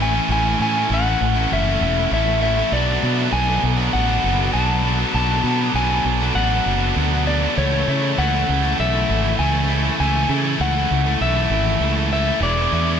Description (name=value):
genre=rock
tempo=99 BPM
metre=4/4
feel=straight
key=A major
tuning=A4 = 440 Hz
part: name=electric slide guitar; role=melody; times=0.0-13.0 s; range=C#5 to A5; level=-22 LUFS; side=left 2 dB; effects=tape echo
part: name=muted studio string section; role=sustained chords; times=0.0-13.0 s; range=A4 to D6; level=-33 LUFS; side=right 2 dB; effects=none
part: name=biting overdriven guitar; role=riff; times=0.0-13.0 s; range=A2 to A4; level=-23 LUFS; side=left 12 dB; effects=none
part: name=tight distorted guitar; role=riff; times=0.0-13.0 s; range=A2 to E4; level=-24 LUFS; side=right 15 dB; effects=distortion
part: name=fretless electric bass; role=bass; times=0.0-13.0 s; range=E1 to C#3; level=-21 LUFS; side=right 1 dB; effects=none
room=light reverb, digital ambience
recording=none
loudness=-16 LUFS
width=side -8 dB against mid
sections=0.0-13.0 A section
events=none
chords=0.0 Amaj7; 2.7 Bm7; 7.6 Amaj7; 12.4 E7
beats=| 0.30 0.90 1.51 2.12 | 2.72 3.33 3.94 4.54 | 5.15 5.75 6.36 6.97 | 7.57 8.18 8.79 9.39 | 10.00 10.60 11.21 11.81 | 12.42